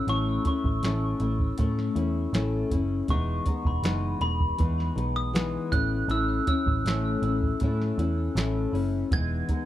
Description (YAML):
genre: indie pop, bedroom pop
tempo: 80 BPM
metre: 4/4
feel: straight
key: unclear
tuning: A4 = 436 Hz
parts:
  - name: glockenspiel with soft plastic mallets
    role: melody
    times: 0.0-9.7 s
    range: B5 to G#6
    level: -33 LUFS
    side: right 1 dB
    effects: analog chorus, tape echo
  - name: nylon-string guitar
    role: accompaniment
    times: 0.0-9.7 s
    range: A2 to E4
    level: -29 LUFS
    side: left 4 dB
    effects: lush chorus, warbly pitch drift
  - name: vintage muted picked electric bass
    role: bass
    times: 0.1-9.4 s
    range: E1 to A2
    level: -28 LUFS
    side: right 1 dB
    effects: none
  - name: soft vintage rhythm box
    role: drums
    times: 0.1-9.7 s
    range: hi-hat, kick drum, snare drum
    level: -28 LUFS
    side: right 1 dB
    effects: none
room: light reverb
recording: dry, close 1970s-style studio recording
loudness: -24 LUFS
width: side -13 dB against mid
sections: 0.0-9.7 A section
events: none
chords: 0.0 A; 3.1 Emaj7; 5.7 A; 9.1 Emaj7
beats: | 0.08 0.83 1.59 2.34 | 3.09 3.84 4.60 5.35 | 6.10 6.85 7.61 8.36 | 9.11